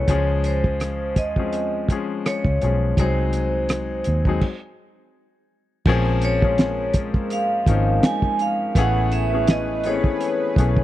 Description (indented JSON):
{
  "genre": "R&B, neo-soul",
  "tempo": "83 BPM",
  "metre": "4/4",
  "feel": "swing 55% on 16ths",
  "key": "unclear",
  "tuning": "A4 = 440 Hz",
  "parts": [
    { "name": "vibraphone with medium hard mallets", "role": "melody", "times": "0.0-10.8 s", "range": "C5 to Ab5", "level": "-24 LUFS", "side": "right 1 dB", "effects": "none" },
    { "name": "bright concert grand piano", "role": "accompaniment", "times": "0.0-10.8 s", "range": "E3 to Ab4", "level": "-25 LUFS", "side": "left 6 dB", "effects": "none" },
    { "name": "vintage muted fingered electric bass", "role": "bass", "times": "0.0-10.8 s", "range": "Ab1 to Eb2", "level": "-23 LUFS", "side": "right 1 dB", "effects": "none" },
    { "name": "cloth-damped thuddy drum kit", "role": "drums", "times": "0.1-10.8 s", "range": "crash cymbal, hi-hat, kick drum, rim click, snare drum", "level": "-20 LUFS", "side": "right 1 dB", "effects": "none" },
    { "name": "chorused pulse-width pad", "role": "sustained chords", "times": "5.9-10.8 s", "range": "Ab3 to B4", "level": "-31 LUFS", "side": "right 2 dB", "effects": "none" }
  ],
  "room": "small room ambience",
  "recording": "dry, close 1970s-style studio recording",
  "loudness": "-18 LUFS",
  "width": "side -14 dB against mid",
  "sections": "0.0-5.9 A section; 5.9-10.8 B section",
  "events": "stop 4.4-5.9",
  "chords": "0.1 Dbmaj7; 3.0 Ab7/C; 5.9 Bbm9; 8.8 Amaj9",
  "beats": "| 0.08 0.80 1.52 2.25 | 2.97 3.69 4.42 5.14 | 5.86 6.58 7.31 8.03 | 8.75 9.48 10.20"
}